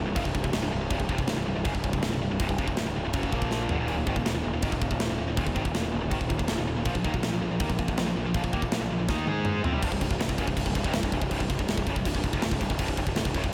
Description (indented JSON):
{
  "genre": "heavy metal",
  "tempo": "162 BPM",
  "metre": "4/4",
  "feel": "straight",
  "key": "C minor",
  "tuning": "A4 = 440 Hz",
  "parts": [
    { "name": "heavy high-gain guitar", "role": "riff", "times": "0.0-13.5 s", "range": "C2 to Ab4", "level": "-33 LUFS", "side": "equal", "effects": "distortion, slapback echo" },
    { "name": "fuzz picked electric bass", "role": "bass", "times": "0.0-13.5 s", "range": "C1 to Ab2", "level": "-33 LUFS", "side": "equal", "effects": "overdrive" },
    { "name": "tight metal drum kit", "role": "drums", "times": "0.2-13.5 s", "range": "crash cymbal, kick drum, snare drum, toms", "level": "-32 LUFS", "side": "equal", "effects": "none" }
  ],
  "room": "light reverb, small room ambience",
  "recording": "none",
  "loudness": "-28 LUFS",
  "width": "mono",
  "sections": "0.0-9.8 A section; 9.8-13.5 B section",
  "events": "drum fill 3.5-3.9, 9.1-9.8",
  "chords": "0.0 C5; 3.3 Bb5; 3.7 Ebmaj7; 3.9 Eb5; 6.9 Bb5; 9.3 Ab5; 9.6 Csus4; 9.8 C5"
}